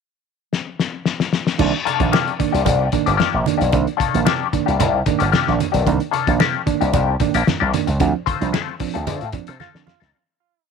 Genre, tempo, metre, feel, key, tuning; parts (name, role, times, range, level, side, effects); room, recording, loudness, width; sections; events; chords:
funk; 112 BPM; 4/4; straight; C dorian; A4 = 439 Hz
cloth-damped thuddy drum kit; drums; 0.5-10.1 s; crash cymbal, hi-hat, kick drum, snare drum; -22 LUFS; left 4 dB
reed electric piano; stabs; 1.6-9.9 s; C3 to D4; -23 LUFS; right 14 dB; overdrive
slap bass with an envelope filter; bass; 1.6-10.1 s; G1 to D3; -20 LUFS; right 1 dB
congas; percussion; 1.6-10.1 s; -25 LUFS; right 9 dB
semi-hollow electric guitar; accompaniment; 1.9-10.2 s; Eb3 to C5; -21 LUFS; left 14 dB; wah, ensemble chorus
bright trombone; second line; 9.6-10.2 s; F4; -51 LUFS; right 14 dB
light reverb, studio ambience; 1960s-style stereo with parts hard left and right; -16 LUFS; side -6 dB against mid
0.0-1.6 pickup bar; 1.6-10.1 A section
drum fill 0.5-1.6, 9.6-10.1; fade-out 8.0-10.1; band accent 8.0-10.1
0.0 N.C.; 1.6 Cm9; 8.0 Dm7